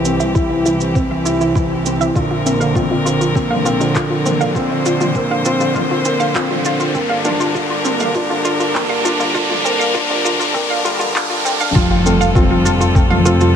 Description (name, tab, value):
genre	piano and strings electronica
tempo	100 BPM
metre	4/4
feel	straight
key	F major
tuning	A4 = 443 Hz
part	bright string quartet	sustained chords	0.0-13.6 s	D3 to C5	-22 LUFS	left 2 dB	sidechain pumping
part	felt-muted upright piano	riff	0.0-13.6 s	D3 to E4	-18 LUFS	right 1 dB	ping-pong delay
part	rich studio double bass section	bass	0.0-13.6 s	F1 to C2	-24 LUFS	equal	tube saturation, sidechain pumping
part	riser and impact	sound effects	0.0-13.6 s	none	-23 LUFS	equal	none
part	analog pluck	arpeggios	0.1-13.5 s	C4 to F5	-20 LUFS	equal	chorus, sidechain pumping, ping-pong delay
part	organic electronic drum kit	drums	0.1-13.5 s	handclaps, shaker, toms	-25 LUFS	right 1 dB	none
part	electronic kick drum	drums	0.4-13.1 s	none	-17 LUFS	equal	overdrive
room	moderate huge ambient reverb, RT60 7.2 s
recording	high-pass filter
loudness	-13 LUFS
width	side -8 dB against mid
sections	0.0-11.8 A section; 11.8-13.6 B section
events	build-up 0.0-11.8; riser 0.0-11.8; filter sweep on synth arpeggio sound 0.0-11.8; filter sweep 0.0-11.8; drop 11.8-13.6; impact 11.8-13.6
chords	0.0 C; 2.2 Bbadd9; 7.0 Gm; 11.8 Fadd9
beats	0.35 0.95 1.55 | 2.15 2.75 3.35 3.96 | 4.55 5.16 5.75 6.36 | 6.96 7.55 8.15 8.76 | 9.36 9.96 10.55 11.15 | 11.76 12.36 12.96 13.55